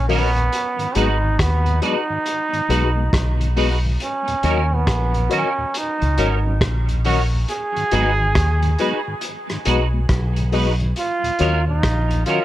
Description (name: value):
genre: roots reggae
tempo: 69 BPM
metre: 4/4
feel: swing 63% on 16ths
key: unclear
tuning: A4 = 437 Hz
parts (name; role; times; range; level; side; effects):
- brilliant trombone; melody; 0.0-12.4 s; Cb4 to Ab4; -23 LUFS; right 2 dB; dub echo
- deep dub fingered electric bass; bass; 0.0-12.2 s; Ab1 to Eb2; -19 LUFS; equal; none
- mellow tonewheel organ; accompaniment; 0.1-12.4 s; Eb2 to Db4; -29 LUFS; left 2 dB; slow rotary speaker, dub echo
- semi-hollow electric guitar; accompaniment; 0.1-12.4 s; Db4 to Cb5; -27 LUFS; right 5 dB; ensemble chorus, dub echo
- mellow reed electric piano; stabs; 0.1-12.4 s; Gb4 to Eb5; -26 LUFS; left 7 dB; fast tremolo
- vintage drum kit; drums; 0.1-12.4 s; hi-hat, kick drum, rim click; -25 LUFS; equal; none
room: light reverb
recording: none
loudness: -17 LUFS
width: side -14 dB against mid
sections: 0.0-12.4 A section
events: none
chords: 0.0 Ebm7; 0.5 Abm7; 4.0 Ebm7; 7.5 Abm7; 11.0 Ebm7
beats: | 0.52 1.39 2.26 3.13 | 4.00 4.87 5.74 6.61 | 7.48 8.35 9.22 10.09 | 10.96 11.83